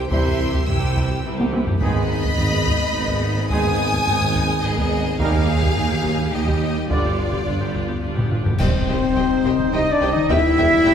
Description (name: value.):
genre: cinematic, epic orchestral film score.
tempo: 106 BPM.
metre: 3/4.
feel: straight.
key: unclear.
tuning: A4 = 440 Hz.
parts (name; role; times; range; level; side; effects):
bright symphonic violin section; melody; 0.0-10.9 s; C5 to E6; -28 LUFS; left 2 dB; none.
warm symphonic violin section; second line; 0.0-10.9 s; F4 to Ab5; -28 LUFS; left 1 dB; none.
rich studio viola section; accompaniment; 0.0-10.9 s; E3 to C5; -29 LUFS; equal; none.
bright studio cello section; bass; 0.0-10.9 s; C2 to C3; -28 LUFS; right 1 dB; none.
mellow tuba; bass; 0.0-10.9 s; E1 to Eb2; -26 LUFS; right 3 dB; none.
rich symphonic double bass section; bass; 0.0-10.9 s; E1 to Eb2; -28 LUFS; right 2 dB; none.
clear trombone section; sustained chords; 0.1-10.9 s; C3 to Eb4; -32 LUFS; right 2 dB; none.
mellow French horn section; sustained chords; 0.1-10.9 s; Bb3 to F4; -21 LUFS; left 4 dB; none.
dark trumpet section; stabs; 0.1-10.9 s; Ab4 to E5; -26 LUFS; right 2 dB; none.
taiko ensemble; drums; 0.1-10.9 s; none; -24 LUFS; equal; none.
bright silver concert flute; second line; 8.6-10.9 s; C5 to E5; -25 LUFS; equal; none.
clash cymbals and concert bass drum; percussion; 8.6-9.7 s; none; -28 LUFS; equal; none.
timpani; percussion; 8.6-9.4 s; C3; -33 LUFS; left 2 dB; none.
impact; sound effects; 8.6-10.3 s; none; barely audible; none; none.
room: wet recital hall reverb, RT60 1.6 s.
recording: recorded in a church or concert hall.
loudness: -17 LUFS.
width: side -8 dB against mid.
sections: 0.0-8.6 A section; 8.6-10.9 B section.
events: drum fill 1.4-1.8, 8.2-8.6; band accent 8.6-9.2; impact 8.6-10.3.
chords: 0.0 C; 1.8 Abm; 5.2 Eb; 6.9 G7; 8.6 Cm; 10.3 Em.